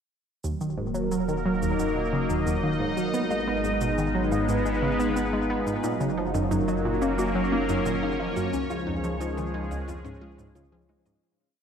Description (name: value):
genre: ambient, sequencer-driven space music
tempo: 89 BPM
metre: 4/4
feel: straight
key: Eb minor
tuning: A4 = 437 Hz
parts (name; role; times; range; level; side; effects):
- sweeping resonant pad; sustained chords; 0.4-11.2 s; F3 to Eb5; -27 LUFS; right 1 dB; chorus
- analog pluck; riff; 0.4-11.2 s; Db2 to Cb4; -29 LUFS; equal; chorus, ping-pong delay
- warm sub bass; bass; 0.4-11.2 s; Eb1 to Db2; -35 LUFS; equal; none
- cabasa and woodblock; percussion; 0.4-11.2 s; none; -43 LUFS; right 5 dB; ping-pong delay
- pulsing gated texture; texture; 1.3-11.2 s; F4 to F5; -42 LUFS; right 2 dB; none
- wide unison pluck; arpeggios; 5.8-11.2 s; Eb3 to Eb5; -33 LUFS; moving between left 5 dB and right 1 dB; auto-pan, ping-pong delay
room: wet concert hall reverb, RT60 2.4 s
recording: dark, warm production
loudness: -24 LUFS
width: side -7 dB against mid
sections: 0.4-11.2 A section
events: fade-out 7.6-11.2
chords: 0.4 Ebm; 3.1 Abm; 5.8 Gb; 8.5 Db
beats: | 0.44 1.12 1.79 2.46 | 3.14 3.81 4.49 5.16 | 5.84 6.51 7.18 7.86 | 8.53 9.21 9.88 10.55